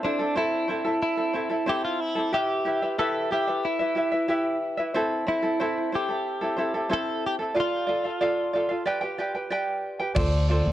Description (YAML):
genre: acoustic pop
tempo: 92 BPM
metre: 4/4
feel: straight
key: A minor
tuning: A4 = 440 Hz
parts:
  - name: direct-recorded clean electric guitar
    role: melody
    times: 0.0-8.8 s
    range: D4 to A4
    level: -27 LUFS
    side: equal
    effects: wide subtle chorus, tape echo
  - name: tenor ukulele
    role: accompaniment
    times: 0.0-10.7 s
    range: C4 to G5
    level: -26 LUFS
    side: equal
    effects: none
  - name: upright bass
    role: bass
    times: 10.2-10.7 s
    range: D2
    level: -22 LUFS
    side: equal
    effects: none
  - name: modern studio drum kit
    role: drums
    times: 10.2-10.3 s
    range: crash cymbal, kick drum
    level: -29 LUFS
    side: equal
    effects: none
room: light reverb, studio ambience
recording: worn, warbling old tape, cassette tape, warbly pitch drift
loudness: -24 LUFS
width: side -13 dB against mid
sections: 0.0-10.2 A section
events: none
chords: 0.0 Am; 2.3 Em; 4.9 Am; 7.6 Dm; 8.9 G; 10.2 Dm7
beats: 0.36 1.02 1.67 | 2.32 2.98 3.63 4.28 | 4.94 5.59 6.25 6.90 | 7.55 8.21 8.86 9.51 | 10.16